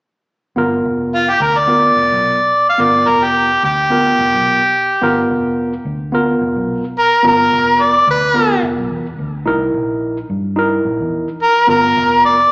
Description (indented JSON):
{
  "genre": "straight-eighth soul blues",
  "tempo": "108 BPM",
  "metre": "4/4",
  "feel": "swing 56% on 16ths",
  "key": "unclear",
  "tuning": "A4 = 440 Hz",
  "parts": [
    { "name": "tine electric piano", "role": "accompaniment", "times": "0.6-12.4 s", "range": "B3 to A#4", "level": "-17 LUFS", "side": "equal", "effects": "slapback echo" },
    { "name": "vintage muted fingered electric bass", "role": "bass", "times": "0.6-12.4 s", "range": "F1 to G2", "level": "-25 LUFS", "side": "equal", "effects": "none" },
    { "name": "warm harmonica", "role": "melody", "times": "1.1-12.5 s", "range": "F4 to F5", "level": "-11 LUFS", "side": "equal", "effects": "overdrive" }
  ],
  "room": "moderate plate reverb, RT60 2.3 s",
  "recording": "live gig heard through the venue's PA, club reverb, small speaker sound",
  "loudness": "-12 LUFS",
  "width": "side -28 dB against mid",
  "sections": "0.6-12.5 A section",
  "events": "harmonica solo 0.6-12.5",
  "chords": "0.6 G7#9; 9.5 C7#9 (rootless); 11.7 G7#9",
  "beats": "| 0.57 1.13 1.68 2.24 | 2.79 3.35 3.90 4.46 | 5.02 5.57 6.13 6.68 | 7.24 7.79 8.35 8.91 | 9.46 10.02 10.57 11.13 | 11.68 12.24"
}